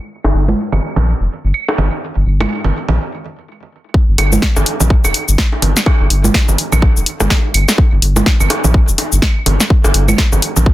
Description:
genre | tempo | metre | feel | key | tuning
minimal techno | 125 BPM | 4/4 | swing 59% on 16ths | G minor | A4 = 440 Hz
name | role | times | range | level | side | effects
round analog bass | bass | 0.2-10.7 s | F1 to Bb1 | -14 LUFS | equal | sidechain pumping
bongos, congas and claves | percussion | 0.2-10.6 s | none | -18 LUFS | right 3 dB | tape echo
electronic kick drum | drums | 3.9-10.7 s | none | -12 LUFS | equal | none
punchy analog drum machine | drums | 4.2-10.6 s | cabasa, hi-hat, snare drum | -16 LUFS | left 2 dB | overdrive
room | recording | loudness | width
little or no reverb | dense, heavily limited modern master, low-pass filter | -11 LUFS | side -15 dB against mid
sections
0.0-3.9 A section; 3.9-10.7 B section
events
filter sweep 0.0-3.9; stop 3.0-3.9; drop 3.9-10.7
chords
none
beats
| 0.10 0.58 1.06 1.54 | 2.02 2.50 2.98 3.46 | 3.94 4.42 4.90 5.38 | 5.86 6.34 6.82 7.30 | 7.78 8.26 8.74 9.22 | 9.70 10.18 10.66

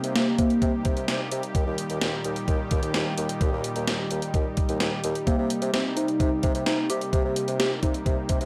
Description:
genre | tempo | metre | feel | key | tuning
synth-pop | 129 BPM | 4/4 | straight | C minor | A4 = 440 Hz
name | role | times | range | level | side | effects
soft struck synth lead | melody | 0.0-1.0, 5.3-8.5 s | Bb3 to G4 | -29 LUFS | equal | chorus, phaser, tape echo
warm analog pad | sustained chords | 0.0-8.5 s | Bb2 to G4 | -33 LUFS | equal | chorus
warm bassoon | bass | 0.0-8.5 s | Eb2 to C3 | -32 LUFS | equal | none
gated 80s digital drum machine | drums | 0.0-8.5 s | hi-hat, kick drum, snare drum | -29 LUFS | equal | gated reverb, gated reverb snare
room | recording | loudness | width
little or no reverb | dry, gritty hardware recording | -26 LUFS | mono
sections
0.0-8.5 A section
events
none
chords
0.0 Cm7; 1.5 Eb; 5.3 Cm7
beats
0.15 0.62 1.08 | 1.55 2.01 2.48 2.94 | 3.41 3.87 4.34 4.80 | 5.27 5.73 6.20 6.66 | 7.13 7.59 8.06

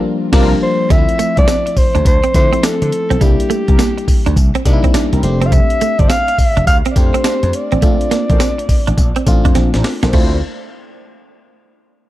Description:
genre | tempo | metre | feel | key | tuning
R&B, new jack swing | 104 BPM | 4/4 | swing 63% on 16ths | D minor | A4 = 440 Hz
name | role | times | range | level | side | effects
FM electric piano | accompaniment | 0.0-10.4 s | F3 to G4 | -21 LUFS | left 3 dB | chorus
mellow synth brass | stabs | 0.3-10.4 s | C4 to C5 | -25 LUFS | right 1 dB | chorus, phaser, ping-pong delay
slap bass | bass | 0.3-10.4 s | F1 to D3 | -16 LUFS | equal | none
breakbeat sampler-style drum kit | drums | 0.3-10.3 s | crash cymbal, hi-hat, kick drum, snare drum, tambourine | -14 LUFS | equal | none
dark alto saxophone | melody | 0.6-9.6 s | G4 to F5 | -18 LUFS | equal | none
direct-recorded clean electric guitar | riff | 0.9-10.3 s | G3 to D4 | -22 LUFS | right 7 dB | wide subtle chorus
room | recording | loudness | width
little or no reverb | dark, warm production | -11 LUFS | side -15 dB against mid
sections
0.9-10.1 A section; 10.1-12.1 B section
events
band accent 0.0-0.9; drum fill 9.6-10.1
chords
0.0 C9sus4; 0.9 Dm9; 3.2 C7; 5.2 F6; 7.8 Bbmaj9; 10.1 Dm9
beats
0.33 | 0.90 1.48 2.06 2.63 | 3.21 3.79 4.37 4.94 | 5.52 6.10 6.67 7.25 | 7.83 8.40 8.98 9.56 | 10.13

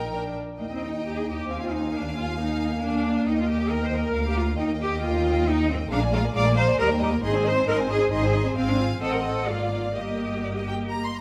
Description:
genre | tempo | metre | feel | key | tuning
quick classical-period movement for string orchestra | 135 BPM | 3/4 | rubato | Eb major | A4 = 441 Hz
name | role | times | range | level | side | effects
rich studio violin section | melody | 0.0-11.2 s | Eb5 to C6 | -39 LUFS | equal | none
clear studio violin section | second line | 0.0-11.2 s | D4 to C6 | -35 LUFS | equal | none
warm studio viola section | accompaniment | 0.0-11.1 s | G3 to Bb4 | -32 LUFS | equal | none
clear studio cello section | bass | 0.0-10.9 s | Bb2 to D5 | -29 LUFS | equal | none
dark studio double bass section | bass | 0.0-11.2 s | G1 to Eb2 | -30 LUFS | equal | none
room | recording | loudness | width
moderate scoring stage reverb, RT60 1.6 s | none | -25 LUFS | mono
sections
0.6-11.2 A section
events
none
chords
0.1 Bb; 0.6 Eb; 1.5 Fm7/Eb; 1.9 Bb7/Eb; 3.3 Eb; 4.1 Bb/D; 4.6 Eb; 5.9 Bb7; 6.8 Eb; 7.2 Ab; 8.6 Fm/Ab; 9.0 Adim7; 9.5 Bb7/Ab; 10.0 Eb/G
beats
0.13 | 0.60 1.05 1.50 | 1.94 2.39 2.83 | 3.27 3.71 4.14 | 4.59 5.02 5.47 | 5.91 6.35 6.79 | 7.23 7.68 8.12 | 8.57 9.02 9.48 | 9.96 10.43 10.90

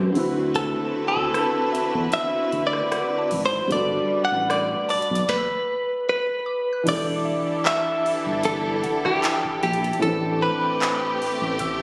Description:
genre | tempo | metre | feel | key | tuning
contemporary R&B | 76 BPM | 4/4 | swing 54% on 16ths | E minor | A4 = 440 Hz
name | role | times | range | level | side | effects
direct-recorded clean electric guitar | melody | 0.0-11.6 s | G4 to F#5 | -26 LUFS | equal | digital delay
felt-muted upright piano | accompaniment | 0.0-11.8 s | A2 to B4 | -31 LUFS | equal | none
rich studio string section | sustained chords | 0.0-11.8 s | D3 to B4 | -31 LUFS | equal | none
smooth gliding synth bass | bass | 0.0-11.8 s | E1 to F#2 | -31 LUFS | equal | none
mallet-like synth pluck | texture | 0.0-11.8 s | B4 to G6 | -40 LUFS | equal | chorus, digital delay
booming analog drum machine | drums | 0.2-11.8 s | crash cymbal, handclaps, hi-hat, kick drum, rim click, snare drum | -33 LUFS | equal | none
room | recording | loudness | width
digital ambience | recorded on a phone in the room, studio reverb | -23 LUFS | mono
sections
0.0-6.9 A section; 6.9-11.8 B section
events
stop 5.3-6.9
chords
0.2 D13; 3.7 Gmaj7; 6.9 Em11; 10.0 Am11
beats
| 0.55 1.34 2.13 2.92 | 3.71 4.50 5.29 6.08 | 6.87 7.66 8.45 9.23 | 10.02 10.81 11.60

